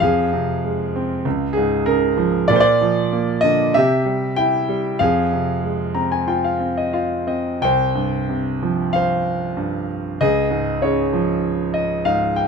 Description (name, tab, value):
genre	classical, lyrical solo piano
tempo	94 BPM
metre	4/4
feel	uneven beats, rubato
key	F minor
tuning	A4 = 440 Hz
part	clear concert grand piano	solo	0.0-12.5 s	C2 to Bb5	-17 LUFS	right 1 dB	none
room	light reverb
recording	close, detailed microphones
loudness	-17 LUFS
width	side -5 dB against mid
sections	0.0-7.6 A section; 7.6-12.5 B section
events	grand piano fill 5.6-7.6, 11.4-12.5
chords	0.0 Fm; 1.3 Db6; 2.5 Bb; 3.8 C; 5.0 Fm; 7.6 Csus4; 10.2 Db